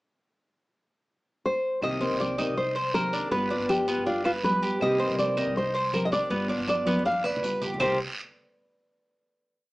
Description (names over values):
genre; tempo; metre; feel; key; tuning
latin, Cuban son and guajira; 161 BPM; 4/4; straight; C minor; A4 = 440 Hz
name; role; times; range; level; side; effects
nylon-string guitar; melody; 1.5-8.0 s; F4 to F5; -27 LUFS; equal; none
fingerpicked steel-string acoustic guitar; accompaniment; 1.8-8.0 s; C3 to G4; -31 LUFS; left 1 dB; none
upright bass; bass; 1.8-8.0 s; G1 to C2; -38 LUFS; equal; none
claves; percussion; 1.8-7.9 s; none; -35 LUFS; right 2 dB; none
congas; percussion; 1.8-7.9 s; none; -35 LUFS; equal; none
guiro; percussion; 1.8-7.9 s; none; -39 LUFS; right 2 dB; none
Cuban tres; arpeggios; 2.0-8.0 s; B3 to C5; -30 LUFS; right 1 dB; none
room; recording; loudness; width
moderate studio reverb, RT60 0.7 s; small speaker sound; -24 LUFS; side -20 dB against mid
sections
0.3-1.8 pickup bar; 1.8-7.8 montuno (vamp); 7.8-9.3 final chord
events
drum fill 6.9-7.8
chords
0.3 N.C.; 1.8 Cm7; 3.3 G7; 4.8 Cm7; 6.3 G7; 7.8 C7(no3)